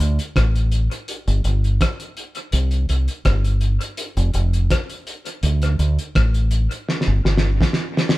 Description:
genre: roots reggae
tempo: 83 BPM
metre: 4/4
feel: straight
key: unclear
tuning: A4 = 440 Hz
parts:
  - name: deep dub fingered electric bass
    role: bass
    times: 0.0-7.6 s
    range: F1 to D2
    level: -18 LUFS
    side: equal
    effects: none
  - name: cloth-damped thuddy drum kit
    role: drums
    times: 0.0-8.2 s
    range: hi-hat, kick drum, rim click, snare drum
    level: -22 LUFS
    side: equal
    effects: dub echo
room: little or no reverb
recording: band playing live in one room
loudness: -17 LUFS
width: side -18 dB against mid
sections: 0.0-8.2 A section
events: drum fill 6.9-8.2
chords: none

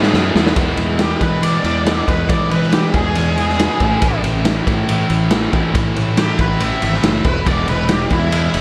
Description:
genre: classic rock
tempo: 139 BPM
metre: 4/4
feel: straight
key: E major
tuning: A4 = 440 Hz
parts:
  - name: crunchy overdriven guitar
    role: riff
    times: 0.0-8.6 s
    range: A2 to E4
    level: -24 LUFS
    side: equal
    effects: none
  - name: tight distorted guitar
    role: riff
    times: 0.0-8.6 s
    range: E2 to G#4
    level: -26 LUFS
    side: equal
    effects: distortion
  - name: fuzz fingered electric bass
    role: bass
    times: 0.0-8.6 s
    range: E1 to E3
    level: -22 LUFS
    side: equal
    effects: overdrive
  - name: raw garage drum kit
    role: drums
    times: 0.0-8.6 s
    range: kick drum, ride cymbal, snare drum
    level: -20 LUFS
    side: equal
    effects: none
  - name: octave-fuzz lead guitar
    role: melody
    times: 1.0-8.6 s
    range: E4 to E5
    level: -24 LUFS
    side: equal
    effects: wah, distortion
room: moderate large studio reverb, RT60 0.8 s, studio reverb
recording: none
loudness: -16 LUFS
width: mono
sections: 0.6-8.6 A section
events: drum fill 0.0-0.6; lead electric guitar solo 0.6-8.6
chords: 0.0 E; 3.8 A; 7.5 E

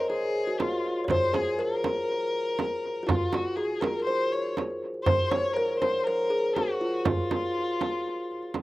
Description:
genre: Arabic maqam ensemble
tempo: 121 BPM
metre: 4/4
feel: straight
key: F maqam kurd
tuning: A4 = 440 Hz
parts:
  - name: kalimba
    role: melody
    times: 0.0-8.5 s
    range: F4 to Db5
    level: -27 LUFS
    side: equal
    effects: slapback echo
  - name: dark violin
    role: second line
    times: 0.0-8.5 s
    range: F4 to Db5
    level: -31 LUFS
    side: left 2 dB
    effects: slapback echo
  - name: darbuka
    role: percussion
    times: 0.1-8.6 s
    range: none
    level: -33 LUFS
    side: right 1 dB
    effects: none
  - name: frame drum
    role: percussion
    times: 0.6-8.6 s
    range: none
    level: -30 LUFS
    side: right 4 dB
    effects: none
room: little or no reverb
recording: recorded outdoors, with no room sound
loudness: -25 LUFS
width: side -17 dB against mid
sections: 0.0-8.6 A section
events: none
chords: none

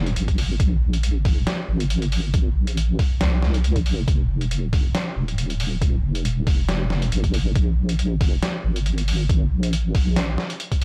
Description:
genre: deep dubstep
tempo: 138 BPM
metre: 4/4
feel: swing 54% on 16ths, half-time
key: F minor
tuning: A4 = 438 Hz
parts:
  - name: deep soft wobble bass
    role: bass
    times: 0.0-10.8 s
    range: Eb1 to C2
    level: -24 LUFS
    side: equal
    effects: chorus, tube saturation
  - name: trip hop sampler-style drum kit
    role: drums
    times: 0.1-10.8 s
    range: hi-hat, snare drum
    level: -30 LUFS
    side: equal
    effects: none
  - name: electronic kick drum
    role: drums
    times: 0.3-10.8 s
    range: none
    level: -23 LUFS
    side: equal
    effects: overdrive
room: little or no reverb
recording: none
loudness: -22 LUFS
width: mono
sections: 0.0-10.8 A section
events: none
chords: none

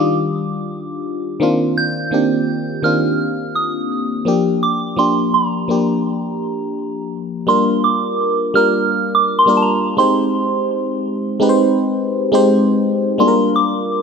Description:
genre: R&B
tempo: 84 BPM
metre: 4/4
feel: swing 58% on 16ths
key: unclear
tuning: A4 = 441 Hz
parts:
  - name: soft synth bell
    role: melody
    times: 0.0-14.0 s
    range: A5 to G6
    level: -19 LUFS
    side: right 2 dB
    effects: chorus, phaser, ping-pong delay
  - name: FM electric piano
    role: accompaniment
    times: 0.0-14.0 s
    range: Eb3 to C5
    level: -16 LUFS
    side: left 1 dB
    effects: chorus, phaser
room: moderate lush hall reverb, RT60 2.6 s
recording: none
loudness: -14 LUFS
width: side -6 dB against mid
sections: 0.0-7.5 A section; 7.5-14.0 B section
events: none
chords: 0.0 Ebmaj9; 1.4 Cm11; 4.3 Gm7; 10.0 Abmaj7; 13.2 Gm7

